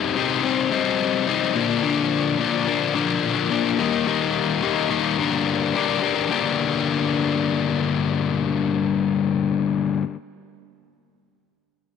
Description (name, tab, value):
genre	rock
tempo	108 BPM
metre	4/4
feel	straight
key	G minor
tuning	A4 = 440 Hz
part	overdriven electric guitar	solo	0.0-10.0 s	G2 to Eb4	-20 LUFS	left 7 dB	slapback echo
room	little or no reverb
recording	none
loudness	-19 LUFS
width	side -6 dB against mid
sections	0.0-6.3 A section; 6.3-8.5 B section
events	none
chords	0.0 Cm; 1.6 Bb; 3.8 Eb; 5.2 Gm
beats	0.16 0.72 1.28 | 1.83 2.39 2.95 3.51 | 4.07 4.62 5.18 5.74 | 6.30 6.86 7.42 7.97